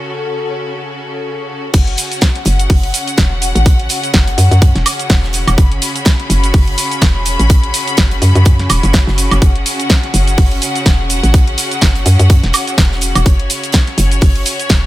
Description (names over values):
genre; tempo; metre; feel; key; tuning
bass house; 125 BPM; 4/4; swing 57% on 16ths; F# minor; A4 = 443 Hz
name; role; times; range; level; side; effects
bright symphonic string section; sustained chords; 0.0-14.9 s; C#3 to B5; -20 LUFS; left 2 dB; sidechain pumping
hollow knocking FM bass; bass; 1.7-14.9 s; E1 to F#2; -13 LUFS; equal; tube saturation, sidechain pumping
electronic kick drum; drums; 1.7-14.8 s; none; -10 LUFS; equal; none
house drum kit; drums; 1.7-14.8 s; crash cymbal, hi-hat, shaker, snare drum, woodblock; -17 LUFS; right 1 dB; none
huge arena drum kit; drums; 1.7-14.8 s; hi-hat, snare drum; -26 LUFS; right 3 dB; none
room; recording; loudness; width
small room ambience; none; -10 LUFS; side -16 dB against mid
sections
0.0-1.7 A section; 1.7-14.9 B section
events
break 0.0-1.7; drop 1.7-14.9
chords
0.0 F#5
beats
0.30 0.78 1.26 | 1.74 2.22 2.70 3.18 | 3.66 4.14 4.62 5.10 | 5.58 6.06 6.54 7.02 | 7.50 7.98 8.46 8.94 | 9.42 9.90 10.38 10.86 | 11.34 11.82 12.30 12.78 | 13.26 13.74 14.22 14.70